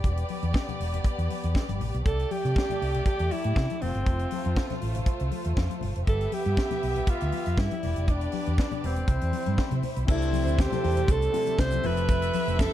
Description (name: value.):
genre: disco.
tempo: 119 BPM.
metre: 4/4.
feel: straight.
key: C major.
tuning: A4 = 440 Hz.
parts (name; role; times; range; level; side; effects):
warm studio violin section; second line; 0.0-12.7 s; G3 to E5; -35 LUFS; right 1 dB; none.
hollow-body short-scale fingered electric bass; bass; 0.0-12.7 s; E1 to C3; -28 LUFS; equal; none.
tight funk drum kit; drums; 0.0-12.7 s; crash cymbal, hi-hat, kick drum, snare drum; -27 LUFS; equal; none.
congas; percussion; 0.0-12.7 s; none; -36 LUFS; left 9 dB; none.
breathy alto saxophone; melody; 2.1-12.7 s; C4 to C5; -30 LUFS; right 1 dB; none.
warm grand piano; accompaniment; 10.1-12.7 s; C3 to A4; -33 LUFS; left 6 dB; none.
bright tonewheel organ; sustained chords; 10.1-12.7 s; C3 to E5; -37 LUFS; right 1 dB; overdrive, slow rotary speaker.
tube shaker; percussion; 10.1-12.7 s; none; -51 LUFS; right 10 dB; none.
room: light reverb.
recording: dark, warm production.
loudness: -24 LUFS.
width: side -12 dB against mid.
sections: 0.0-10.1 A section; 10.1-12.7 B section.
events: none.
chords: 0.0 Em7; 2.0 C6; 3.8 F; 6.1 G7; 7.8 Em7; 9.1 Cmaj7; 10.1 C6; 11.8 Fmaj7.